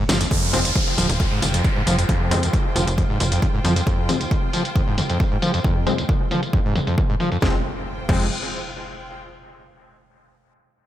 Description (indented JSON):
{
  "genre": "driving peak-time techno",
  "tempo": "135 BPM",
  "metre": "4/4",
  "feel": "straight",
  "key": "F minor",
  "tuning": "A4 = 440 Hz",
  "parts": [
    { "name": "screaming distorted acid line", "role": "riff", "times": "0.0-8.3 s", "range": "F1 to F3", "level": "-24 LUFS", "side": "equal", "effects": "distortion, wide subtle chorus, sidechain pumping, dub echo" },
    { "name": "tight sequencer bass", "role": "bass", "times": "0.1-3.8, 7.4-8.3 s", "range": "Eb1 to F2", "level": "-23 LUFS", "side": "equal", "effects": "sidechain pumping" },
    { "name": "techno drum kit", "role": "drums", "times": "0.1-8.2 s", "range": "crash cymbal, hi-hat, ride cymbal, snare drum, tambourine, toms", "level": "-26 LUFS", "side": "equal", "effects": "sidechain pumping on hats, low-pass filter on hats, sidechain pumping on toms, low-pass filter on toms, sidechain pumping on cymbals, low-pass filter on cymbals, sidechain pumping on perc, low-pass filter on perc, low-pass filter on snare, low-pass filter on room" },
    { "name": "electronic kick drum", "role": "drums", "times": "0.3-8.2 s", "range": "none", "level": "-21 LUFS", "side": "equal", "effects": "overdrive" },
    { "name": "downlifter and impact", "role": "sound effects", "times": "0.3-3.9, 7.6-9.2 s", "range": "none", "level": "-28 LUFS", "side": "equal", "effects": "none" },
    { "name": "rich symphonic string section", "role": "texture", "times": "0.3-9.2 s", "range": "F4 to G5", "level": "-32 LUFS", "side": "equal", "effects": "sidechain pumping" },
    { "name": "supersaw stab", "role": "stabs", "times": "0.5-8.3 s", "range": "F3 to C4", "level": "-29 LUFS", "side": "left 3 dB", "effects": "sidechain pumping, low-pass filter, dub echo" }
  ],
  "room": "light reverb, digital ambience",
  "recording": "none",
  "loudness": "-18 LUFS",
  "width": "side -12 dB against mid",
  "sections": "0.3-7.4 A section; 7.4-9.2 B section",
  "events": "drum fill 0.1; band accent 0.1; fade-out on string section 0.3-7.4; filter sweep on drum 0.3-7.4; filter sweep on supersaw synth 0.3-7.4",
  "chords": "0.3 Fm"
}